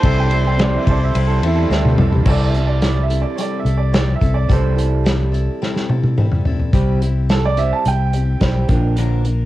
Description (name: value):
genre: folk rock and heartland rock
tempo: 107 BPM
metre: 4/4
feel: straight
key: C major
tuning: A4 = 440 Hz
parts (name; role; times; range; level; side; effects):
- mellow harmonica; melody; 0.0-1.7 s; C5; -26 LUFS; equal; tape echo
- bright upright piano; second line; 0.0-9.0 s; E4 to A5; -24 LUFS; right 6 dB; cassette tape
- clear baby grand piano; accompaniment; 0.0-2.2 s; E4 to C5; -31 LUFS; left 8 dB; cassette tape
- picked steel-string acoustic guitar; accompaniment; 0.0-9.5 s; Bb2 to Bb4; -26 LUFS; left 7 dB; cassette tape
- pedal harmonium; sustained chords; 0.0-2.2 s; G3 to A4; -32 LUFS; right 6 dB; none
- electric guitar through a small old amp; riff; 0.0-9.5 s; Bb2 to A4; -26 LUFS; right 7 dB; cassette tape
- fingered electric bass; bass; 0.0-9.5 s; Bb1 to E2; -17 LUFS; equal; none
- unplugged drum kit; drums; 0.0-9.4 s; crash cymbal, hi-hat, kick drum, ride cymbal, snare drum, toms; -18 LUFS; equal; none
room: small room ambience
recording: home recording on cassette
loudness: -14 LUFS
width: side -15 dB against mid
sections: 0.0-2.3 A section; 2.3-6.7 B section; 6.7-9.5 C section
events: drum fill 1.7-2.3, 5.6-6.7; upright piano solo 6.7-9.5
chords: 0.0 C6; 6.7 C; 8.7 Bb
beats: | 0.04 0.59 1.15 1.70 | 2.26 2.82 3.38 3.93 | 4.49 5.05 5.61 6.17 | 6.73 7.29 7.85 8.41 | 8.97